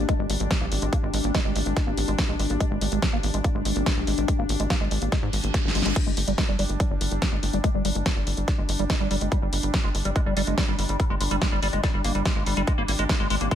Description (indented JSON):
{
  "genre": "psychedelic trance",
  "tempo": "143 BPM",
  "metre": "4/4",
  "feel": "straight",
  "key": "G phrygian",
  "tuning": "A4 = 440 Hz",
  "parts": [
    { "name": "evolving wavetable pad", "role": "sustained chords", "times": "0.0-13.6 s", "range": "G3 to D4", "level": "-31 LUFS", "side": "left 2 dB", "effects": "chorus, built-in reverb, sidechain pumping" },
    { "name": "liquid acid bass", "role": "riff", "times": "0.0-13.6 s", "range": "G3 to C4", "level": "-29 LUFS", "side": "moving between left 6 dB and right 5 dB", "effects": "phaser, auto-pan, sidechain pumping, digital delay" },
    { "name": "tight sequencer bass", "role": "bass", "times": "0.0-13.5 s", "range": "G1 to Ab2", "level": "-27 LUFS", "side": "equal", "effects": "tube saturation" },
    { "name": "big-room dance drum kit", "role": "drums", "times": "0.1-13.6 s", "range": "crash cymbal, hi-hat, snare drum", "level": "-30 LUFS", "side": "equal", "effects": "none" },
    { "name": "electronic kick drum", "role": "drums", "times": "0.1-13.6 s", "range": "none", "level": "-26 LUFS", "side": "equal", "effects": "none" },
    { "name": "reverse cymbal", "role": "sound effects", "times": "5.3-6.0 s", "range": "none", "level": "-33 LUFS", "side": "right 5 dB", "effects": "none" }
  ],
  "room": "little or no reverb",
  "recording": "none",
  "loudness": "-22 LUFS",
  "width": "side -10 dB against mid",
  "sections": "0.0-13.6 A section",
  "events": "filter sweep on acid bass 0.0-13.6; reverse cymbal 5.3-6.0; drum fill 5.5-6.0",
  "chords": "0.0 Abmaj7(b5, no3); 6.0 G5; 12.7 Abmaj7(b5, no3)"
}